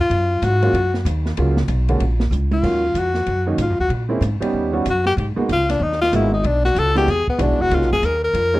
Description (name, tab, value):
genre	jazz, small-group swing and bop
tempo	190 BPM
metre	4/4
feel	swing 62% on 8ths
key	Eb minor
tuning	A4 = 438 Hz
part	breathy tenor saxophone	melody	0.0-8.6 s	B3 to Bb4	-19 LUFS	left 2 dB	slapback echo
part	upright bass	bass	0.0-8.6 s	E1 to Bb2	-20 LUFS	equal	none
part	open jazz drum kit	drums	0.1-8.4 s	crash cymbal, hi-hat, kick drum, ride cymbal, snare drum, toms	-29 LUFS	right 1 dB	none
part	warm upright piano	accompaniment	0.6-8.6 s	D3 to Ab4	-22 LUFS	right 3 dB	none
room	little or no reverb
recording	dry, close 1970s-style studio recording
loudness	-16 LUFS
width	side -18 dB against mid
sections	0.0-2.6 A section; 2.6-8.6 A section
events	tenor saxophone solo 0.0-8.6; drum fill 2.3-2.6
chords	0.1 F#maj7; 2.0 A#m; 2.6 Ebm9; 3.9 Bbm7b5; 4.5 Eb7alt; 5.2 Abm9; 6.4 Bm; 7.1 E9; 7.7 Gb6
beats	| 0.10 0.42 0.74 1.05 | 1.37 1.69 2.00 2.32 | 2.64 2.96 3.27 3.59 | 3.90 4.22 4.54 4.86 | 5.17 5.49 5.81 6.12 | 6.44 6.76 7.07 7.39 | 7.71 8.02 8.34